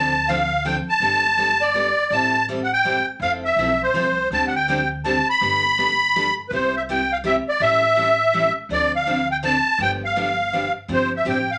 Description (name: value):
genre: acoustic string swing (jazz manouche)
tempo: 164 BPM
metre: 3/4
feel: swing 62% on 8ths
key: unclear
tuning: A4 = 440 Hz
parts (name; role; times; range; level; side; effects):
- musette accordion; melody; 0.0-11.6 s; B4 to B5; -20 LUFS; equal; none
- picked steel-string acoustic guitar; accompaniment; 0.0-11.4 s; C3 to A4; -29 LUFS; equal; none
- upright bass; bass; 0.0-11.6 s; F1 to D2; -36 LUFS; equal; none
room: wet studio ambience, RT60 0.5 s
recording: none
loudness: -20 LUFS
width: mono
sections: 0.0-6.5 A section; 6.5-11.6 B section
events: none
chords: 0.0 Dm7; 1.0 Gadd9; 2.1 Am7; 3.2 Fmaj7; 4.3 D7sus4; 5.4 Gadd9; 6.5 Cmaj7; 7.6 A7; 8.7 Dm7; 9.8 G7; 10.9 G7sus4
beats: 0.28 0.64 | 1.01 1.38 1.74 | 2.11 2.48 2.84 | 3.21 3.58 3.94 | 4.31 4.67 5.04 | 5.41 5.77 6.14 | 6.50 6.87 7.24 | 7.60 7.97 8.33 | 8.70 9.06 9.43 | 9.79 10.16 10.53 | 10.89 11.26